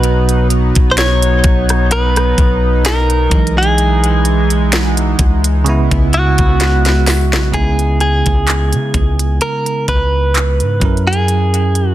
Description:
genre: contemporary R&B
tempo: 64 BPM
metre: 4/4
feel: swing 54% on 16ths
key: C# dorian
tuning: A4 = 438 Hz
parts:
  - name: direct-recorded clean electric guitar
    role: melody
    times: 0.0-11.9 s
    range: F#4 to C#5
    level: -17 LUFS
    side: equal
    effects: ping-pong delay
  - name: bell-like tine electric piano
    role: accompaniment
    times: 0.0-11.9 s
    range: B2 to A#4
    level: -19 LUFS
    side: right 4 dB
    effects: medium stereo tremolo
  - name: chorused pulse-width pad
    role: sustained chords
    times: 0.0-7.5 s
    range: C#3 to E4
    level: -20 LUFS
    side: equal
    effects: sidechain pumping
  - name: long sustained 808-style bass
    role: bass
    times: 0.0-11.9 s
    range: B1 to C#3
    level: -15 LUFS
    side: equal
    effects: none
  - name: trap drum kit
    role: drums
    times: 0.0-11.9 s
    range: handclaps, hi-hat, kick drum, rim click, snare drum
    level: -16 LUFS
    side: equal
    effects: none
room: digital ambience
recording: dense, heavily limited modern master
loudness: -11 LUFS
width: side -13 dB against mid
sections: 0.0-7.5 A section; 7.5-11.9 B section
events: drum fill 6.6-7.5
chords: 0.0 B; 3.3 Emaj7/B; 5.7 C#m7; 10.8 F#7

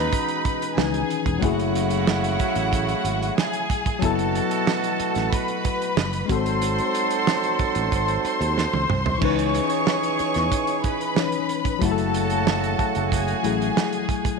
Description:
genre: lush 1970s-style soul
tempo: 92 BPM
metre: 4/4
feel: straight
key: F# dorian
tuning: A4 = 440 Hz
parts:
  - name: rich studio string section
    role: second line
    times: 0.0-14.4 s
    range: F#4 to C#6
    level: -26 LUFS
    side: left 3 dB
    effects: none
  - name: tine electric piano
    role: accompaniment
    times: 0.0-14.4 s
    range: D#3 to C#5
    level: -26 LUFS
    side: left 13 dB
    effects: medium stereo tremolo
  - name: warm horn section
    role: stabs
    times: 0.0-14.0 s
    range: B2 to A4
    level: -28 LUFS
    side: right 14 dB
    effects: tape echo
  - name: modern bright fingered electric bass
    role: bass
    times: 0.0-13.7 s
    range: E1 to E2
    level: -27 LUFS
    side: right 1 dB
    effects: none
  - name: warm soul drum kit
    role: drums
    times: 0.1-14.4 s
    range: crash cymbal, hi-hat, kick drum, snare drum, toms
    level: -26 LUFS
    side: right 5 dB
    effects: none
room: moderate echo chamber reverb, RT60 2.5 s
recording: 1960s-style stereo with parts hard left and right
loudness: -20 LUFS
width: side -4 dB against mid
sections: 0.0-14.4 A section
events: drum fill 8.6-9.2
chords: 0.0 C#m9; 1.4 F#m9; 4.0 B7sus4/F#; 6.3 G#7b9; 9.2 C#m9; 11.8 F#m9

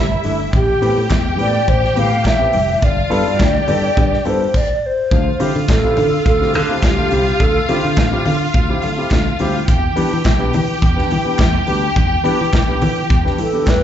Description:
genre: disco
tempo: 105 BPM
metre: 4/4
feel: straight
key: D dorian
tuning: A4 = 440 Hz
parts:
  - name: mellow hollow alto flute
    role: melody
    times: 0.0-8.3, 13.4-13.8 s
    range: F4 to F5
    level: -18 LUFS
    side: equal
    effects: slapback echo
  - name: clear studio string section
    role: second line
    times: 0.0-13.8 s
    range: E4 to G5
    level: -21 LUFS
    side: left 1 dB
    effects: slapback echo
  - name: dark concert grand piano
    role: accompaniment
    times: 0.0-13.8 s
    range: G2 to A4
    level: -23 LUFS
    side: left 2 dB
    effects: slapback echo
  - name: fingered electric bass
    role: bass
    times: 0.0-13.8 s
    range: F1 to E3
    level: -19 LUFS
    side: right 1 dB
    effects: none
  - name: modern studio drum kit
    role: drums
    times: 0.2-13.8 s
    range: crash cymbal, hi-hat, kick drum, snare drum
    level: -18 LUFS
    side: equal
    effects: none
  - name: congas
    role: percussion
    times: 0.2-13.8 s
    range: none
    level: -26 LUFS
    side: left 7 dB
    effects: slapback echo
  - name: group handclap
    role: percussion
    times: 1.1-13.8 s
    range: none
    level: -32 LUFS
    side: right 2 dB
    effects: none
room: light reverb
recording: live gig heard through the venue's PA, club reverb, nothing above 7.8 kHz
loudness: -13 LUFS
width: side -10 dB against mid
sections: 0.0-5.1 A section; 5.1-13.8 B section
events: none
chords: 0.0 C69/G; 0.5 Am7; 2.8 G13; 5.1 Dm11; 9.7 Em7

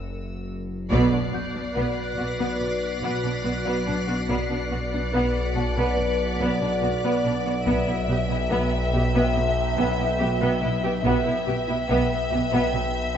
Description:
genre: cinematic, suspense film score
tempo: 71 BPM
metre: 4/4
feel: straight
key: B phrygian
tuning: A4 = 436 Hz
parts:
  - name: analog drone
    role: drone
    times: 0.0-13.2 s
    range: F#1 to B1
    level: -29 LUFS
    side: equal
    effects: chorus, phaser
  - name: celesta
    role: texture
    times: 0.0-13.2 s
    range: B4 to G6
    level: -34 LUFS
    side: left 6 dB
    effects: none
  - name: muted studio violin section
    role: texture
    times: 0.0-7.2 s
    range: E6 to C7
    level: -38 LUFS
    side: left 4 dB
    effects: none
  - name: muted studio violin section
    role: melody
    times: 0.9-13.2 s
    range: D5 to E5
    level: -30 LUFS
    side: left 4 dB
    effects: none
  - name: muted studio violin section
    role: second line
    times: 0.9-13.2 s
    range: B3 to G4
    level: -30 LUFS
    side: left 1 dB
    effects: none
  - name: muted studio viola section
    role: accompaniment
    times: 0.9-12.7 s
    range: B3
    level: -30 LUFS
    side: right 1 dB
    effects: none
  - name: icy glass pad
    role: sustained chords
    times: 1.5-13.2 s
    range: F#4 to G5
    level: -30 LUFS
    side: equal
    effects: chorus, built-in reverb, phaser
  - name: muted studio cello section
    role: riff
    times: 0.9-13.0 s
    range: B2 to B3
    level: -32 LUFS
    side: right 2 dB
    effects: none
  - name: muted studio cello section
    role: bass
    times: 0.9-12.6 s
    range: B2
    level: -31 LUFS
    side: right 3 dB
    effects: none
  - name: muted studio double bass section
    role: bass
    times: 0.9-12.4 s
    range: B1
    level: -32 LUFS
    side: right 3 dB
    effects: none
  - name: taiko ensemble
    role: drums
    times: 0.9-2.6, 7.7-9.3 s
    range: none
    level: -34 LUFS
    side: left 1 dB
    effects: none
room: wet scoring stage reverb, RT60 2.0 s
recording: nothing above 7.9 kHz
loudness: -21 LUFS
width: side -8 dB against mid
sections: 0.9-13.2 A section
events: break 0.0-0.9; band accent 0.9-1.8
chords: 0.0 F#7(no3); 0.9 Bm; 7.7 Em/B

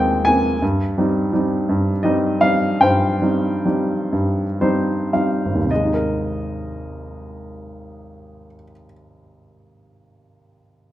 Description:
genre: classical, lyrical solo piano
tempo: 35-57 BPM (dotted quarters)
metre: 6/8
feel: rubato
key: Ab major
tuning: A4 = 437 Hz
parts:
  - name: warm upright piano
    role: solo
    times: 0.0-10.9 s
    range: Ab1 to Bb5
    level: -17 LUFS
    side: equal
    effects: none
room: moderate recital hall reverb, RT60 1.3 s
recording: none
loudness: -17 LUFS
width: side -13 dB against mid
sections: 0.0-5.7 A section; 5.7-10.9 B section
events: slowing down 0.6-5.7; upright piano fill 4.1-5.7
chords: 0.0 Abadd9; 0.6 Eb6/G; 5.7 Abadd9

